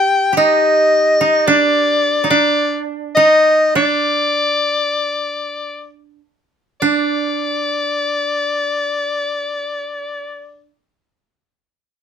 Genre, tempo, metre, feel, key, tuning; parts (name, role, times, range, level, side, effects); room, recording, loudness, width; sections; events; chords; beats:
japanese traditional, Japanese chamber music; 33-56 BPM; 2/4; rubato; A4 = 440 Hz
bright soprano saxophone; melody; 0.0-10.6 s; D5 to G5; -15 LUFS; left 2 dB
koto; second line; 0.0-10.7 s; D4 to G4; -18 LUFS; right 6 dB
light reverb; -14 LUFS; side -8 dB against mid
0.0-6.8 A section; 6.8-10.3 B section
slowing down 1.5-6.8
0.42 | 1.49 2.59 | 3.77 5.15 | 6.81 8.55